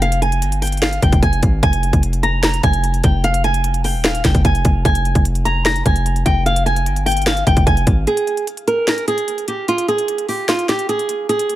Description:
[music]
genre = hip hop, trap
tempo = 149 BPM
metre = 4/4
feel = half-time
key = F minor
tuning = A4 = 440 Hz
[part]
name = flamenco guitar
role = melody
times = 0.0-11.6 s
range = F4 to Bb5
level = -19 LUFS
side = right 1 dB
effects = low-pass filter, tape echo
[part]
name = hard-hitting 808-style bass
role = bass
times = 0.0-8.1 s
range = Eb1 to Ab1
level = -18 LUFS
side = equal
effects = none
[part]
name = trap drum kit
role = drums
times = 0.0-11.6 s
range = hi-hat, kick drum, snare drum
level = -18 LUFS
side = equal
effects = none
[sound]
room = little or no reverb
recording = none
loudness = -14 LUFS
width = side -14 dB against mid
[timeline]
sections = 0.0-8.1 A section; 8.1-11.6 B section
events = break 8.1-11.6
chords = 0.0 Fm; 8.1 N.C.

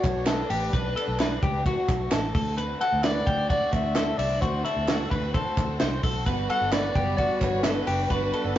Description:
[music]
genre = jangly indie pop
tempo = 130 BPM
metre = 4/4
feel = straight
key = unclear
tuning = A4 = 440 Hz
[part]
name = warm soprano saxophone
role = melody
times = 0.0-8.6 s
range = A4 to F#5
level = -29 LUFS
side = left 1 dB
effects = digital delay
[part]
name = warm studio string section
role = sustained chords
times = 0.0-8.6 s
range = D3 to B4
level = -35 LUFS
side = equal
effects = none
[part]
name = twelve-string electric guitar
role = arpeggios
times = 0.0-8.6 s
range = E4 to C5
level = -29 LUFS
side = left 2 dB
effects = spring reverb
[part]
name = vintage muted fingered electric bass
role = bass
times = 0.0-8.6 s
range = F#1 to D2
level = -31 LUFS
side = equal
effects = none
[part]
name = compact cocktail drum kit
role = drums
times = 0.0-8.6 s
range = hi-hat, kick drum, ride cymbal, snare drum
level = -27 LUFS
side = right 1 dB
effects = none
[part]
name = group handclap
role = percussion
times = 0.0-7.8 s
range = none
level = -38 LUFS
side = right 2 dB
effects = none
[part]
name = picked plugged-in twelve-string acoustic guitar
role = accompaniment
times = 6.3-8.6 s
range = G3 to F#4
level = -31 LUFS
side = right 3 dB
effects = none
[sound]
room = moderate studio reverb, RT60 0.5 s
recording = rough rehearsal-room recording, nothing above 7.6 kHz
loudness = -23 LUFS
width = side -12 dB against mid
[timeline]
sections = 0.0-8.6 A section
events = none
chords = 0.0 Bm7; 2.3 D7; 6.3 Gmaj7

